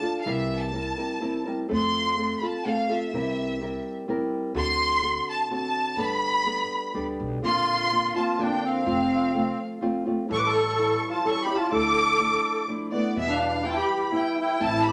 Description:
mexican folk, mariachi; 126 BPM; 3/4; straight; C major; A4 = 440 Hz
clear chamber violin section; melody; 0.0-14.9 s; D5 to D6; -28 LUFS; equal
nylon-string guitar; accompaniment; 0.0-14.9 s; E2 to Bb4; -31 LUFS; equal
upright bass; bass; 0.3-14.9 s; F1 to F2; -38 LUFS; equal
musette accordion; second line; 7.4-14.9 s; B3 to B4; -28 LUFS; equal
wet studio reverb, RT60 0.9 s; -26 LUFS; mono
0.0-14.9 A section
0.3 C7; 1.7 F; 3.1 C7; 4.6 D7; 6.0 Gadd9; 7.4 Bbadd9; 8.9 F; 10.3 A7; 11.7 Dmadd9; 13.2 Em
| 0.25 0.73 1.21 | 1.70 2.18 2.66 | 3.13 3.61 4.08 | 4.56 5.04 5.51 | 5.99 6.46 6.95 | 7.43 7.91 8.39 | 8.87 9.35 9.82 | 10.30 10.78 11.25 | 11.72 12.20 12.68 | 13.17 13.65 14.13 | 14.61

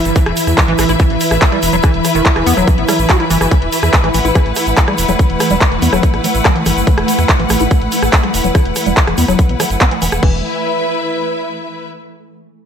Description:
psychedelic trance; 143 BPM; 4/4; straight; A4 = 440 Hz
swarming drone; sustained chords; 0.0-10.2 s; E3 to E4; -20 LUFS; right 3 dB; built-in reverb, sidechain pumping
tube shaker; percussion; 0.0-10.2 s; -25 LUFS; right 6 dB
bright studio string section; texture; 0.0-11.9 s; E4 to F#5; -18 LUFS; left 2 dB; sidechain pumping
round analog bass; bass; 0.1-10.4 s; E1 to E2; -18 LUFS; equal
drum and bass drum kit; drums; 0.1-10.3 s; crash cymbal, handclaps, hi-hat, rim click; -18 LUFS; equal; studio reverb
liquid acid bass; riff; 0.2-10.4 s; D#3 to F#4; -20 LUFS; moving between left 5 dB and right 2 dB; chorus, auto-pan, sidechain pumping, ping-pong delay
electronic kick drum; drums; 0.2-10.3 s; -12 LUFS; equal; studio reverb
light reverb, digital ambience; -11 LUFS; side -8 dB against mid
0.0-10.2 A section; 10.2-11.9 B section
filter sweep on analog synth bass 0.0-10.2; filter sweep on acid bass 0.0-10.2
0.0 E5
| 0.16 0.58 1.00 1.42 | 1.84 2.26 2.67 3.10 | 3.51 3.93 4.35 4.77 | 5.19 5.61 6.03 6.45 | 6.87 7.29 7.71 8.13 | 8.55 8.97 9.39 9.81 | 10.23 10.65 11.07 11.49

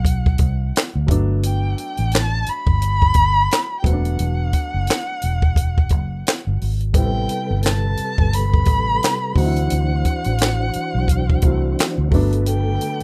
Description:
R&B, neo-soul; 87 BPM; 4/4; swing 57% on 16ths; A dorian; A4 = 440 Hz
dark erhu; melody; 0.0-13.0 s; F#5 to B5; -26 LUFS; equal; plate reverb
warm baby grand piano; accompaniment; 0.0-13.0 s; F#3 to E4; -31 LUFS; equal
vintage muted fingered electric bass; bass; 0.0-12.8 s; E1 to D2; -22 LUFS; equal
compact cocktail drum kit; drums; 0.0-13.0 s; handclaps, hi-hat, kick drum, snare drum; -21 LUFS; equal
mellow tonewheel organ; sustained chords; 6.9-13.0 s; C3 to C5; -28 LUFS; equal; slow rotary speaker, chorus vibrato
little or no reverb; rough home demo mix; -19 LUFS; mono
0.0-13.0 A section
0.0 D9 (rootless); 1.1 Gmaj9; 3.8 E9sus4; 6.9 Am9; 9.4 D9; 12.1 Gmaj9
0.05 0.74 | 1.43 2.12 2.81 3.50 | 4.18 4.87 5.56 6.25 | 6.94 7.63 8.32 9.01 | 9.70 10.39 11.08 11.77 | 12.46

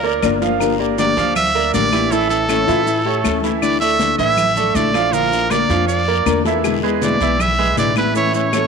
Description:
latin, Cuban son and guajira; 159 BPM; 4/4; straight; D harmonic minor; A4 = 440 Hz
brilliant trumpet; melody; 0.0-8.7 s; A4 to E5; -19 LUFS; right 1 dB
nylon-string guitar; second line; 0.0-3.5, 6.3-6.9 s; E4 to D5; -25 LUFS; left 10 dB
clear baby grand piano; arpeggios; 0.0-8.7 s; E3 to F5; -20 LUFS; right 11 dB
upright bass; bass; 0.0-8.7 s; G1 to A2; -25 LUFS; left 1 dB
congas; percussion; 0.0-8.7 s; -26 LUFS; left 1 dB
fingerpicked plugged-in steel-string acoustic guitar; accompaniment; 0.2-8.7 s; B2 to G4; -22 LUFS; left 12 dB
claves; percussion; 0.2-8.7 s; -30 LUFS; left 16 dB
guiro; percussion; 0.2-8.7 s; -33 LUFS; left 14 dB
maracas; percussion; 0.2-8.7 s; -34 LUFS; right 17 dB
moderate plate reverb, RT60 3.4 s; 1960s-style stereo with parts hard left and right; -14 LUFS; side -5 dB against mid
0.0-8.7 A section
0.0 Bb; 0.6 Gm7; 2.1 A; 3.6 Dsus2; 5.1 Bb; 6.6 E7; 8.1 A
0.23 | 0.61 0.98 1.36 1.74 | 2.12 2.49 2.87 3.25 | 3.62 4.00 4.38 4.75 | 5.13 5.51 5.88 6.26 | 6.64 7.02 7.39 7.77 | 8.15 8.53

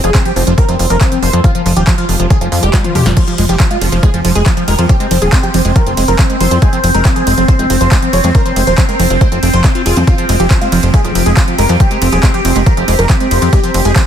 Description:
psychedelic trance; 139 BPM; 4/4; straight; F minor; A4 = 440 Hz
supersaw stab; melody; 0.0-14.0 s; F3 to Db5; -16 LUFS; right 1 dB; phaser, sidechain pumping, dub echo
overdriven acid bass; riff; 0.0-14.0 s; Eb3 to G4; -19 LUFS; moving between left 5 dB and right 5 dB; distortion, auto-pan, cassette tape, sidechain pumping, dub echo
plucky analog bass; bass; 0.0-13.9 s; Eb1 to F2; -14 LUFS; equal
big-room dance drum kit; drums; 0.0-14.0 s; crash cymbal, handclaps, hi-hat, ride cymbal, snare drum, toms; -19 LUFS; right 1 dB
electronic kick drum; drums; 0.1-14.0 s; -10 LUFS; equal
overtone-sweeping drone; sustained chords; 4.0-14.1 s; C4 to C5; -18 LUFS; equal; chorus, built-in reverb, sidechain pumping
digital ambience; dense, heavily limited modern master; -9 LUFS; side -9 dB against mid
0.0-14.1 A section
drum fill 2.7-3.2
0.0 F5
0.15 0.58 1.01 | 1.44 1.87 2.31 2.74 | 3.17 3.60 4.03 4.46 | 4.89 5.33 5.76 6.19 | 6.62 7.05 7.49 7.92 | 8.35 8.78 9.21 9.64 | 10.07 10.51 10.94 11.37 | 11.80 12.23 12.66 13.10 | 13.53 13.96

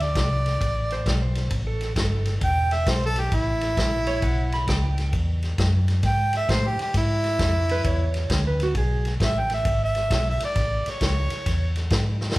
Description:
electric blues shuffle; 133 BPM; 4/4; swing 66% on 8ths; A4 = 440 Hz
warm harmonica; melody; 0.0-11.8 s; E4 to G5; -25 LUFS; right 1 dB; overdrive
vintage muted fingered electric bass; bass; 0.0-12.4 s; E1 to A2; -24 LUFS; equal
vintage drum kit; drums; 0.0-12.4 s; crash cymbal, kick drum, ride cymbal, snare drum; -26 LUFS; equal
clean lap steel guitar; second line; 0.9-9.1 s; F#4 to B5; -30 LUFS; right 3 dB
moderate large studio reverb, RT60 1.2 s; band playing live in one room; -21 LUFS; side -19 dB against mid
0.0-12.4 A section
drum fill 12.1
0.0 D5; 1.5 A7; 5.1 E7; 10.6 A; 11.5 E
0.16 0.61 1.06 | 1.52 1.97 2.42 2.87 | 3.33 3.78 4.23 4.68 | 5.13 5.59 6.04 6.49 | 6.94 7.40 7.85 8.30 | 8.75 9.21 9.66 10.11 | 10.56 11.02 11.47 11.92 | 12.37

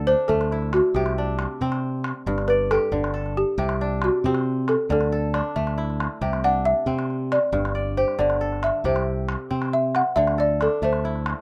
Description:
west african traditional, West African string and xylophone music; 91 BPM (dotted quarters); 12/8; straight; C major; A4 = 439 Hz
balafon; melody; 0.0-10.9 s; F#4 to F#5; -25 LUFS; equal
kora; arpeggios; 0.0-11.4 s; G2 to D5; -30 LUFS; equal
modern bright fingered electric bass; bass; 0.0-11.3 s; G1 to C3; -28 LUFS; equal
calabash; percussion; 0.3-11.4 s; -35 LUFS; equal
light reverb; rough home demo mix; -23 LUFS; mono
0.0-11.4 A section
balafon solo 0.0-11.4
0.0 D5; 0.9 C; 2.3 G5; 3.6 C5; 4.9 D5; 6.2 C; 7.5 G5; 8.8 C5; 10.2 D5
0.29 | 0.95 1.61 2.27 2.92 | 3.58 4.24 4.90 5.56 | 6.21 6.87 7.53 8.19 | 8.85 9.51 10.16 10.82

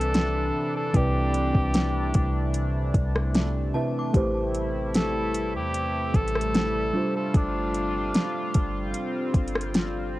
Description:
contemporary R&B; 75 BPM; 4/4; straight; C major; A4 = 437 Hz
warm cor anglais; melody; 0.0-9.0 s; D4 to A4; -30 LUFS; equal; cassette tape, tape echo
muted felt-like synth keys; accompaniment; 0.0-10.2 s; C3 to E5; -30 LUFS; right 1 dB; chorus, cassette tape
chorused pulse-width pad; sustained chords; 0.0-10.2 s; C3 to B4; -31 LUFS; equal; sidechain pumping, cassette tape
soft 808-style bass; bass; 0.0-10.2 s; G1 to E2; -29 LUFS; equal
smooth R&B drum kit; drums; 0.0-9.9 s; hi-hat, kick drum, rim click, snare drum; -23 LUFS; equal; overdrive
synth chime; texture; 3.7-4.7 s; A5 to D6; -39 LUFS; left 1 dB; ensemble chorus, cassette tape, tape echo
little or no reverb; home recording on cassette; -23 LUFS; side -17 dB against mid
0.0-10.2 A section
0.0 Cmaj9; 4.1 Am7; 6.9 G9sus4
0.14 | 0.94 1.74 2.54 3.34 | 4.14 4.94 5.74 6.54 | 7.34 8.14 8.94 9.74

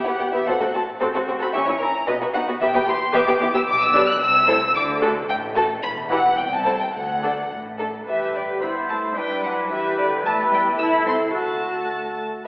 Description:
quick classical-period movement for string orchestra; 111 BPM; 2/4; rubato; E minor, G major from 3.7 s; A4 = 437 Hz
dark studio violin section; melody; 0.0-12.2 s; E4 to F#6; -22 LUFS; left 1 dB
warm studio violin section; second line; 0.0-12.2 s; B3 to E6; -25 LUFS; equal
dark studio viola section; accompaniment; 0.1-12.3 s; E3 to C5; -23 LUFS; equal
dark studio cello section; bass; 0.1-12.2 s; C2 to E4; -29 LUFS; equal
warm studio double bass section; bass; 0.2-12.3 s; E1 to G2; -38 LUFS; equal
wet scoring stage reverb, RT60 1.7 s; heard from further back in the room, telephone sound; -18 LUFS; side -25 dB against mid
0.0-8.1 A section; 8.1-12.5 B section
0.5 F#dim/A; 1.5 A#dim; 2.1 B5; 2.6 Em; 3.7 G/B; 4.2 Am/C; 4.8 D; 5.8 N.C.; 6.4 Am/C; 6.9 D; 8.1 G; 8.6 C/G; 9.2 G; 10.3 Em; 10.8 Am/C; 11.3 D
| 0.47 1.01 | 1.55 2.08 | 2.61 3.14 | 3.68 4.21 | 4.75 5.29 | 5.83 6.38 | 6.94 7.51 | 8.08 8.63 | 9.17 9.72 | 10.26 10.80 | 11.35 11.90

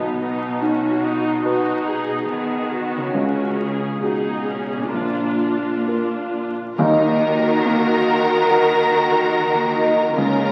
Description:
cinematic, emotional film score for orchestra; 64-72 BPM; 4/4; rubato; Eb minor; A4 = 440 Hz
rich symphonic viola section; accompaniment; 0.0-10.5 s; B3 to Ab4; -27 LUFS; equal
warm grand piano; accompaniment; 0.0-10.5 s; Bb1 to B4; -25 LUFS; equal
concert harp; arpeggios; 0.0-10.5 s; Bb2 to Bb5; -26 LUFS; equal
rich symphonic cello section; bass; 0.0-10.5 s; Bb2 to D#3; -28 LUFS; equal
warm symphonic violin section; melody; 6.8-10.5 s; Bb5; -26 LUFS; equal
warm symphonic violin section; second line; 6.8-10.5 s; Bb4; -25 LUFS; equal
rich symphonic double bass section; bass; 6.8-10.5 s; Db2 to Eb2; -36 LUFS; equal
timpani; percussion; 6.8-8.0 s; Eb3; -28 LUFS; equal
wet scoring stage reverb, RT60 1.8 s; very old 78 rpm record, vinyl crackle; -20 LUFS; mono
0.0-6.8 A section; 6.8-10.5 A section
0.0 B; 3.1 Dbsus4; 4.9 Bb; 6.8 Ebm
0.62 1.45 2.29 | 3.15 4.03 4.94 5.88 | 6.79 7.65 8.49 9.33 | 10.17

